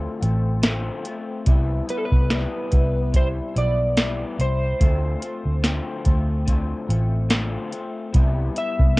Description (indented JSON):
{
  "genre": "indie pop, bedroom pop",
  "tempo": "72 BPM",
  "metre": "4/4",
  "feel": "swing 55% on 16ths",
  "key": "C major",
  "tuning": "A4 = 440 Hz",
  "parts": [
    { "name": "electric guitar through a small old amp", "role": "accompaniment", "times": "0.0-9.0 s", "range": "C3 to F4", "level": "-29 LUFS", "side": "left 3 dB", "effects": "analog chorus, vibrato effect" },
    { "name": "vintage muted fingered electric bass", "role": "bass", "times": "0.0-9.0 s", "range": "A1 to D2", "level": "-22 LUFS", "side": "equal", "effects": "tube saturation" },
    { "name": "soft vintage rhythm box", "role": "drums", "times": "0.2-9.0 s", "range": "hi-hat, kick drum, snare drum", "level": "-20 LUFS", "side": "equal", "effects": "cassette tape" },
    { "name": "electric slide guitar", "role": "melody", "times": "1.9-9.0 s", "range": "A4 to E5", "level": "-27 LUFS", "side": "equal", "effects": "wide subtle chorus, cassette tape, tape echo" }
  ],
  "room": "digital ambience",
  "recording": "home recording on cassette",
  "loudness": "-20 LUFS",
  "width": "side -22 dB against mid",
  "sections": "0.0-9.0 A section",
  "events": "none",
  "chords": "0.0 Dm7; 1.5 Cmaj7; 4.8 Dm7; 8.1 Cmaj7"
}